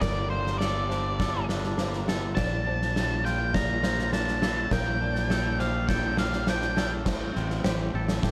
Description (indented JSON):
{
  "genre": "post-rock",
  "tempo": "102 BPM",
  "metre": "4/4",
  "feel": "straight",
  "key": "G minor",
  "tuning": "A4 = 439 Hz",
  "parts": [
    { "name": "octave-fuzz lead guitar", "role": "melody", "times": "0.0-6.9 s", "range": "C5 to Bb5", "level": "-33 LUFS", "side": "equal", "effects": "distortion, analog delay" },
    { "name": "felt-muted upright piano", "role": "arpeggios", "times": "0.0-8.3 s", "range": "A4 to D5", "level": "-43 LUFS", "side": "equal", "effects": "analog delay" },
    { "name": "twangy electric guitar", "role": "arpeggios", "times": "0.0-8.3 s", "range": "G3 to A4", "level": "-40 LUFS", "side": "equal", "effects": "analog delay" },
    { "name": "fuzz fingered electric bass", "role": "bass", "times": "0.0-8.3 s", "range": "G1 to Bb1", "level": "-32 LUFS", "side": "equal", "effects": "overdrive" },
    { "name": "oversized low-tuned drum kit", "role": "drums", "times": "0.0-8.3 s", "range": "crash cymbal, kick drum, snare drum", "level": "-31 LUFS", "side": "equal", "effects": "none" }
  ],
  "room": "studio ambience",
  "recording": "none",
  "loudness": "-27 LUFS",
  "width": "mono",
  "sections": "0.0-7.1 A section; 7.1-8.3 B section",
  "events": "none",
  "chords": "0.0 Gmadd9; 2.4 Bbmaj7; 4.7 Gmadd9/Bb; 7.1 Am7"
}